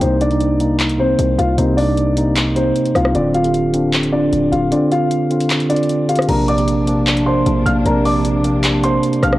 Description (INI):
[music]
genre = hip hop, trap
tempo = 153 BPM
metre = 4/4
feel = half-time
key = Bb major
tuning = A4 = 440 Hz
[part]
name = dark concert grand piano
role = melody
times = 0.0-9.4 s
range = C4 to F6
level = -19 LUFS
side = left 2 dB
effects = low-pass filter, analog delay
[part]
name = mellow tine electric piano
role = accompaniment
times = 0.0-9.4 s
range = C3 to G4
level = -17 LUFS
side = right 2 dB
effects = auto-pan, low-pass filter
[part]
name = distorted 808-style bass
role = bass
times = 0.0-9.4 s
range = D1 to C2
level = -21 LUFS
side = equal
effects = distortion
[part]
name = trap drum kit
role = drums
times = 0.0-9.4 s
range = crash cymbal, handclaps, hi-hat, rim click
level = -22 LUFS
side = equal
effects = cassette tape
[part]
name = dark symphonic string section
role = sustained chords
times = 6.3-9.4 s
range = C3 to D4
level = -25 LUFS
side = left 3 dB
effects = none
[sound]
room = light reverb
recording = home recording on cassette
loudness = -13 LUFS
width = side -16 dB against mid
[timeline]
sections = 0.0-6.3 A section; 6.3-9.4 B section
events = kick muted 4.7-6.3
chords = 0.0 Cm7; 3.1 Dm7; 6.3 Bbadd9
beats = | 0.01 0.41 0.80 1.19 | 1.58 1.97 2.37 2.76 | 3.15 3.54 3.93 4.33 | 4.72 5.11 5.50 5.89 | 6.29 6.68 7.07 7.46 | 7.86 8.25 8.64 9.03